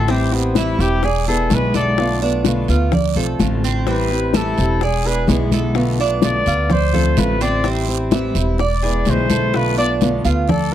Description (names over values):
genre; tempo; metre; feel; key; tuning
latin, Cuban son and guajira; 127 BPM; 4/4; straight; A minor; A4 = 436 Hz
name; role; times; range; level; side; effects
warm trumpet; melody; 0.0-10.7 s; B3 to D5; -21 LUFS; left 2 dB; none
picked acoustic archtop guitar; accompaniment; 0.0-10.7 s; B2 to F4; -22 LUFS; left 2 dB; none
Cuban tres; arpeggios; 0.0-10.7 s; C4 to D5; -24 LUFS; right 7 dB; none
upright bass; bass; 0.0-10.7 s; E1 to D2; -20 LUFS; equal; none
bongos; percussion; 0.1-10.7 s; none; -24 LUFS; left 9 dB; none
congas; percussion; 0.1-10.7 s; none; -22 LUFS; left 1 dB; none
guiro; percussion; 0.1-10.7 s; none; -31 LUFS; right 17 dB; none
room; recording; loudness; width
small room reverb; dry, close 1970s-style studio recording; -15 LUFS; side -11 dB against mid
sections
0.0-10.7 A section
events
trumpet solo 0.0-10.7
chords
0.1 Am7; 1.0 E7; 2.0 Bm7b5; 2.9 Dm7; 3.9 Am7; 4.8 E7; 5.8 Bm7b5; 6.7 Dm7; 7.7 Am7; 8.6 E7; 9.5 Bm7b5